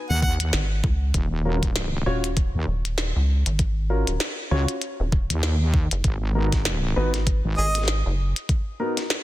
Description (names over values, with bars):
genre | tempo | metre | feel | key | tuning
glitch hop | 98 BPM | 4/4 | swing 58% on 16ths | G# dorian | A4 = 440 Hz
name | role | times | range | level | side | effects
clear harmonica | melody | 0.1-0.3, 7.6-7.8 s | G#4 to F#5 | -28 LUFS | right 1 dB | tape echo
wobble bass | bass | 0.1-7.6 s | D#1 to D#2 | -23 LUFS | equal | chorus
electronic kick drum | drums | 0.2-8.6 s | none | -23 LUFS | equal | overdrive
glitchy drum kit | drums | 0.4-9.2 s | hi-hat, snare drum | -28 LUFS | left 1 dB | soft clipping on snare
rubbery square bass | bass | 0.5-8.3 s | D#1 to C#2 | -23 LUFS | equal | none
dark baby grand piano | stabs | 1.5-9.0 s | B3 to C#5 | -28 LUFS | left 1 dB | sidechain pumping, tape echo
room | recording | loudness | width
little or no reverb | dense, heavily limited modern master | -21 LUFS | side -15 dB against mid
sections
0.0-9.2 A section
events
none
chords
0.0 G#5; 1.1 D#m7; 6.0 G#m7